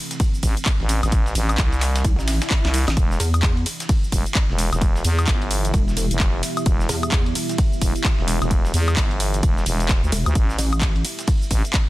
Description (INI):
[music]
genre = bass house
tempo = 130 BPM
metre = 4/4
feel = swing 61% on 16ths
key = E minor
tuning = A4 = 440 Hz
[part]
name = deep dark ambient pad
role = sustained chords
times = 0.0-11.9 s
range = B3 to E5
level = -32 LUFS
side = right 1 dB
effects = chorus, built-in reverb, sidechain pumping
[part]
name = dusty soul sampler-style drum kit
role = drums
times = 0.1-11.9 s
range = hi-hat, snare drum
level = -35 LUFS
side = equal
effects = none
[part]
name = house drum kit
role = drums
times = 0.1-11.9 s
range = handclaps, hi-hat, ride cymbal, shaker, snare drum, woodblock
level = -26 LUFS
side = equal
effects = overdrive
[part]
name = electronic kick drum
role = drums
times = 0.2-11.9 s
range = none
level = -19 LUFS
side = equal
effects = none
[part]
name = growling FM bass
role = bass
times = 0.4-11.6 s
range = E1 to E2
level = -21 LUFS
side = equal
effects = sidechain pumping
[part]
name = pulsing pluck wobble bass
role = bass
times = 2.0-7.3, 10.1-11.0 s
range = E1 to E2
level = -22 LUFS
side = equal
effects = chorus, tube saturation, sidechain pumping
[part]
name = swell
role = sound effects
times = 2.2-3.0 s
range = none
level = -33 LUFS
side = left 2 dB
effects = none
[sound]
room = digital ambience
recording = dense, heavily limited modern master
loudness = -18 LUFS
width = side -17 dB against mid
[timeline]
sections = 0.0-11.9 A section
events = swell 2.2-3.0; drum fill 2.5-3.0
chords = 0.0 Am; 3.0 Em; 10.4 Am